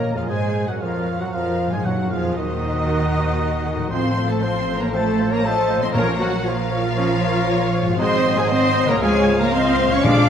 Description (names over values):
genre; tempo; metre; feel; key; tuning
classical, dramatic, fast romantic movement for symphony orchestra; 117 BPM; 4/4; rubato; Bb minor; A4 = 439 Hz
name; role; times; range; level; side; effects
warm symphonic violin section; melody; 0.0-10.3 s; Eb5 to D6; -28 LUFS; left 1 dB; none
flute section; second line; 0.0-10.3 s; Gb4 to F5; -27 LUFS; left 2 dB; none
warm oboe; second line; 0.0-10.3 s; C5 to Bb5; -31 LUFS; right 2 dB; none
warm symphonic violin section; second line; 0.0-10.3 s; Ab4 to F5; -31 LUFS; left 2 dB; none
rich symphonic viola section; accompaniment; 0.0-10.3 s; Eb4 to D5; -29 LUFS; equal; none
warm bassoon; accompaniment; 0.0-10.3 s; Eb3 to Bb3; -30 LUFS; left 1 dB; none
clear trombone section; sustained chords; 0.0-10.2 s; Eb3 to Db4; -29 LUFS; right 3 dB; none
dark French horn section; sustained chords; 0.0-10.3 s; Eb3 to D4; -28 LUFS; left 4 dB; none
concert harp; arpeggios; 0.0-10.3 s; Ab2 to Db5; -29 LUFS; left 6 dB; none
mellow trumpet section; stabs; 0.0-10.3 s; Eb4 to D5; -28 LUFS; left 2 dB; none
clear symphonic double bass section; bass; 0.0-10.3 s; Ab1 to Bb2; -26 LUFS; right 4 dB; none
rich symphonic cello section; bass; 0.0-10.3 s; Eb3 to D4; -25 LUFS; right 2 dB; none
timpani; percussion; 0.0-2.6, 5.9-6.7, 10.0-10.3 s; Bb2; -26 LUFS; equal; none
room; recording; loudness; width
wet concert hall reverb, RT60 2.0 s; dark, warm production; -17 LUFS; side -8 dB against mid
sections
0.0-10.3 A section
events
none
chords
0.0 Bbm; 1.9 Cm7b5; 3.9 F/A; 6.0 Bbm; 8.0 Ab7; 9.0 Db